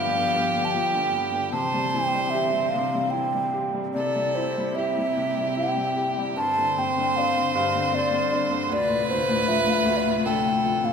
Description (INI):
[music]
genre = celtic folk, Celtic slow air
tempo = 75 BPM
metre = 3/4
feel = uneven beats, rubato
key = unclear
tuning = A4 = 440 Hz
[part]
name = mellow hollow wooden flute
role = melody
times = 0.0-10.9 s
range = C5 to A5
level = -25 LUFS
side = equal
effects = none
[part]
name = clear fiddle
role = second line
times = 0.0-10.9 s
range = G4 to C5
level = -27 LUFS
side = right 3 dB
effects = none
[part]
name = clear upright piano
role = accompaniment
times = 0.0-10.9 s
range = D2 to G4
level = -28 LUFS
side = left 4 dB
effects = none
[part]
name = warm studio string section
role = sustained chords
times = 0.0-10.9 s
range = D2 to F4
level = -32 LUFS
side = equal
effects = none
[sound]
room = wet church reverb, RT60 3.4 s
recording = minimal, uncompressed stereo recording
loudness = -21 LUFS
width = side -6 dB against mid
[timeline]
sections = 0.0-10.9 A section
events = none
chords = 0.0 G7; 1.5 Cadd9; 4.0 C; 6.4 Gsus4; 8.7 Dm7